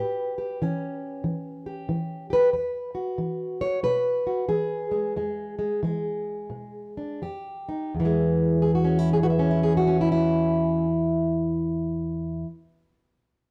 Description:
acoustic country blues, solo or duo; 80-94 BPM; 4/4; swing 64% on 8ths; A4 = 440 Hz
fingerpicked plugged-in old ladder-braced acoustic guitar; solo; 0.0-12.6 s; E2 to E5; -26 LUFS; equal
moderate stone room reverb, RT60 1.0 s; band playing live in one room; -25 LUFS; mono
0.0-8.0 A section; 8.0-10.9 B section
slowing down 2.5-8.0
0.0 A7; 2.5 Eadd9; 7.2 Fsus2; 8.0 Eadd9
0.60 1.24 1.89 | 2.53 3.17 3.82 4.47 | 5.14 5.82 6.51 7.22 | 7.96 8.71 9.45 10.20

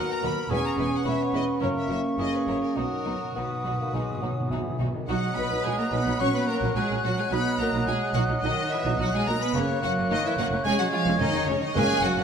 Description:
quick classical-period movement for symphony orchestra; 107 BPM; 4/4; rubato; B major; A4 = 438 Hz
warm studio violin section; melody; 0.0-12.2 s; A#4 to C#6; -32 LUFS; left 2 dB
mellow cor anglais; second line; 0.0-12.2 s; F#4 to D#5; -33 LUFS; right 2 dB
warm studio violin section; second line; 0.0-12.2 s; C#4 to C#5; -33 LUFS; left 3 dB
dark studio viola section; accompaniment; 0.0-12.2 s; F#3 to D#4; -35 LUFS; right 2 dB
mellow French horn section; sustained chords; 0.0-12.0 s; F#3 to F#4; -32 LUFS; equal
dark studio cello section; bass; 0.0-12.2 s; D#2 to C#4; -31 LUFS; right 2 dB
warm studio double bass section; bass; 0.0-12.2 s; E1 to D#2; -32 LUFS; right 3 dB
silver concert flute; second line; 0.5-12.2 s; C#6 to G#6; -34 LUFS; left 4 dB
warm bassoon; accompaniment; 0.5-12.2 s; D#3 to B3; -34 LUFS; right 2 dB
timpani; percussion; 1.6-5.0, 11.8-12.2 s; F#2 to B2; -34 LUFS; equal
wet scoring stage reverb, RT60 1.8 s; -23 LUFS; side -7 dB against mid
0.0-5.1 A section; 5.1-12.2 B section
timpani fill 2.8-5.1
0.0 B; 0.5 C#m7/E; 1.6 F#7; 2.8 B; 6.2 F#; 7.3 B; 9.5 F#; 10.7 C#/E#
| 0.51 1.06 1.62 2.19 | 2.77 3.36 3.94 4.51 | 5.09 5.65 6.20 6.76 | 7.32 7.87 8.43 8.99 | 9.55 10.10 10.65 11.20 | 11.76

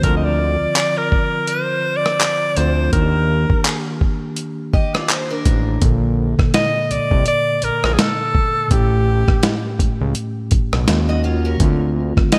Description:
contemporary R&B; 83 BPM; 4/4; swing 58% on 16ths; Bb major; A4 = 440 Hz
bright alto saxophone; melody; 0.0-12.4 s; G4 to Eb5; -22 LUFS; equal; delay
mellow tine electric piano; accompaniment; 0.0-12.4 s; A2 to A4; -25 LUFS; equal
fat analog bass; bass; 0.0-12.2 s; A1 to Eb2; -22 LUFS; equal
dusty soul sampler-style drum kit; drums; 0.0-12.4 s; handclaps, hi-hat, kick drum, rim click, snare drum; -20 LUFS; equal; overdrive, gated reverb
picked acoustic archtop guitar; arpeggios; 4.7-5.8, 11.1-11.8 s; Db4 to Eb5; -28 LUFS; equal; lush chorus, delay
light reverb; bright 1980s-style digital production; -18 LUFS; mono
0.0-5.8 A section; 5.8-12.4 B section
0.0 Dm7; 2.9 Ebmaj7; 5.8 Bbmaj7; 8.7 A7; 10.9 Ebm7; 11.6 Dm7
| 0.04 0.76 1.48 2.21 | 2.93 3.65 4.37 5.10 | 5.82 6.54 7.26 7.99 | 8.71 9.43 10.16 10.88 | 11.60 12.32

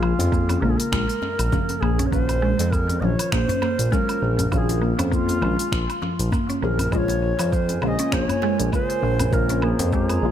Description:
organic downtempo; 100 BPM; 4/4; swing 56% on 16ths; Bb minor; A4 = 438 Hz
bright reedy bass bansuri; melody; 0.0-10.3 s; F4 to F5; -26 LUFS; right 1 dB; analog delay
deep mellow chord stab; accompaniment; 0.0-10.3 s; Db3 to Ab4; -30 LUFS; left 2 dB; chorus, phaser, sidechain pumping, tape echo
mallet-like synth pluck; arpeggios; 0.0-10.1 s; F3 to Db4; -27 LUFS; equal; chorus, tape echo
smooth synth bass; bass; 0.0-10.3 s; Bb1 to F2; -23 LUFS; equal
organic electronic drum kit; drums; 0.0-10.2 s; finger snaps, hi-hat, shaker, woodblock; -32 LUFS; equal; overdrive, tape echo
djembe; percussion; 0.2-10.2 s; -31 LUFS; left 2 dB
electronic kick drum; drums; 0.3-10.1 s; -25 LUFS; equal; overdrive
warbly tape-like pad; sustained chords; 7.5-10.3 s; F4 to Bb5; -31 LUFS; right 1 dB; chorus, built-in reverb, sidechain pumping
light reverb, digital ambience; echo-heavy mix; -19 LUFS; side -10 dB against mid
0.0-10.3 A section
0.0 Bbm7; 2.1 Ebm9/Bb; 6.9 Bbm7
0.32 0.92 1.52 | 2.12 2.72 3.32 3.92 | 4.52 5.12 5.72 6.32 | 6.92 7.52 8.12 8.72 | 9.32 9.92

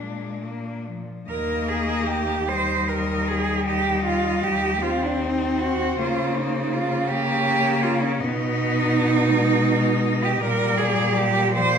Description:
classical, lyrical piece for cello ensemble; 46-56 BPM (dotted quarters); 12/8; rubato; Eb major; A4 = 439 Hz
rich cello; melody; 0.0-11.8 s; D4 to Eb5; -30 LUFS; left 8 dB
rich cello; second line; 0.0-11.8 s; Bb3 to C5; -23 LUFS; right 4 dB
rich cello; accompaniment; 0.0-11.8 s; F3 to C4; -27 LUFS; left 4 dB
rich cello; bass; 0.0-11.8 s; Eb2 to Db3; -26 LUFS; equal
wet recital hall reverb, RT60 1.7 s; minimal, uncompressed stereo recording; -20 LUFS; side -7 dB against mid
0.0-1.3 A section; 1.3-11.8 B section
0.0 Bb; 1.3 Eb; 6.0 Dbmaj13; 8.2 Abm/Cb; 10.4 Bb
0.00 | 1.29 2.48 3.67 4.83 | 5.99 7.09 8.21 9.31 | 10.41 11.54

